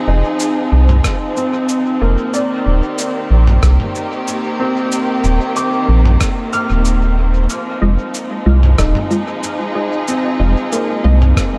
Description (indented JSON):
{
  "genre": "ambient dub",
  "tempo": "93 BPM",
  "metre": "4/4",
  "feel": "straight",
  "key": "F dorian",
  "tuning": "A4 = 435 Hz",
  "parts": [
    { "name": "rich studio string section", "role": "sustained chords", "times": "0.0-11.6 s", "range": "Eb3 to Ab4", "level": "-22 LUFS", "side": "equal", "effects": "vintage 12-bit sampler grit" },
    { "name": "felt-muted upright piano", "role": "arpeggios", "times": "0.0-11.6 s", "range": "Bb3 to F6", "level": "-24 LUFS", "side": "equal", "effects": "dub echo" },
    { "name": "round analog bass", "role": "bass", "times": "0.1-11.3 s", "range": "Eb1 to C2", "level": "-14 LUFS", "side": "equal", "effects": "tube saturation" },
    { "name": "lo-fi sampler-style drum kit", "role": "drums", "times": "0.4-11.5 s", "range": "cabasa, rim click, toms", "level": "-25 LUFS", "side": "equal", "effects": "dub echo" },
    { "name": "electronic kick drum", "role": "drums", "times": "1.0-11.5 s", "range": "none", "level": "-21 LUFS", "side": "equal", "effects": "none" },
    { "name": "filtered dub chord stab", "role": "stabs", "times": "7.8-11.2 s", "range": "Ab3 to Eb5", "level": "-24 LUFS", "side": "equal", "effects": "phaser, analog chorus, dub echo" }
  ],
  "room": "moderate echo chamber reverb, RT60 2.1 s",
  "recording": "none",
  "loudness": "-15 LUFS",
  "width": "mono",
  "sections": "0.0-11.6 A section",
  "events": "none",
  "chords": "0.0 Fm7; 2.3 Eb6; 7.5 Fm7"
}